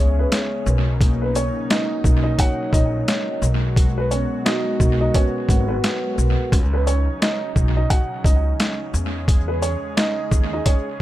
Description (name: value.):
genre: hip hop, boom-bap hip-hop.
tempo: 87 BPM.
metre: 4/4.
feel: swing 60% on 16ths.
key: G# minor.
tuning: A4 = 441 Hz.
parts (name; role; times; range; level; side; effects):
dark upright piano; melody; 0.0-11.0 s; B3 to F#5; -26 LUFS; right 2 dB; high-pass filter, low-pass filter, analog delay.
vibraphone with soft mallets; accompaniment; 0.0-6.5 s; G#3 to F#5; -25 LUFS; equal; cassette tape, high-pass filter, low-pass filter.
warm analog pad; sustained chords; 0.0-11.0 s; B2 to G#4; -32 LUFS; left 1 dB; chorus, high-pass filter, low-pass filter.
upright bass; bass; 0.0-10.6 s; G#1 to E2; -21 LUFS; equal; none.
boom bap sampler-style drum kit; drums; 0.3-10.9 s; hi-hat, kick drum, shaker, snare drum; -19 LUFS; equal; overdrive, analog delay.
room: little or no reverb.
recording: echo-heavy mix.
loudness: -17 LUFS.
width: side -14 dB against mid.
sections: 0.0-11.0 A section.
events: none.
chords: 0.0 E6; 0.7 Bmaj9; 3.4 G#m9/B; 6.5 C#sus4; 8.9 E6.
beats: 0.32 | 1.00 1.69 2.38 3.07 | 3.76 4.45 5.14 5.83 | 6.52 7.21 7.90 8.59 | 9.28 9.97 10.66.